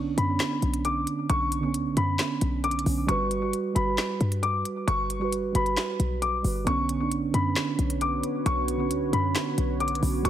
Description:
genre	hip hop, trap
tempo	134 BPM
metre	4/4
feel	half-time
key	B minor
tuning	A4 = 440 Hz
part	muted felt-like synth keys	accompaniment	0.0-10.3 s	D3 to B4	-29 LUFS	right 4 dB	chorus
part	short 808-style bass	bass	0.0-10.3 s	G1 to G2	-28 LUFS	left 1 dB	none
part	dark concert grand piano	melody	0.2-10.3 s	B5 to D6	-30 LUFS	left 3 dB	digital delay
part	trap drum kit	drums	0.2-10.3 s	handclaps, hi-hat, snare drum	-31 LUFS	left 1 dB	none
part	deep dark ambient pad	sustained chords	7.5-10.3 s	B3 to C#5	-32 LUFS	equal	chorus, built-in reverb
room	light reverb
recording	heavily compressed radio sound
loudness	-24 LUFS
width	side -11 dB against mid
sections	0.0-10.3 A section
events	none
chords	0.0 Bmadd9; 3.1 Gmaj7; 6.7 Bmadd9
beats	0.40 0.85 | 1.29 1.74 2.19 2.64 | 3.09 3.53 3.98 4.43 | 4.88 5.33 5.77 6.22 | 6.67 7.12 7.56 8.01 | 8.46 8.91 9.36 9.80 | 10.25

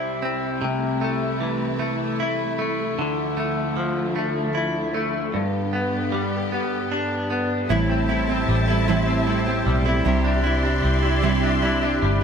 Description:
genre	pop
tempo	51 BPM (dotted quarters)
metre	6/8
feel	straight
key	unclear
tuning	A4 = 440 Hz
part	direct-recorded clean electric guitar	accompaniment	0.0-12.2 s	G2 to E4	-22 LUFS	left 1 dB	double-tracked left and right
part	rich studio string section	sustained chords	0.0-12.2 s	C2 to C6	-29 LUFS	left 1 dB	none
part	picked steel-string acoustic guitar	arpeggios	7.7-12.2 s	A2 to A4	-26 LUFS	right 8 dB	none
part	vintage muted fingered electric bass	bass	7.7-12.2 s	G1 to C2	-23 LUFS	equal	none
room	light reverb, small room ambience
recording	none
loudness	-20 LUFS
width	side -7 dB against mid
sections	0.0-7.7 A section; 7.7-12.2 B section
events	none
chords	0.0 C; 0.6 Am/C; 3.0 Dmadd9; 5.3 G; 7.7 Am7; 10.1 Cadd9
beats	| 0.61 1.79 | 2.98 4.16 | 5.34 6.52 | 7.70 8.88 | 10.06 11.24

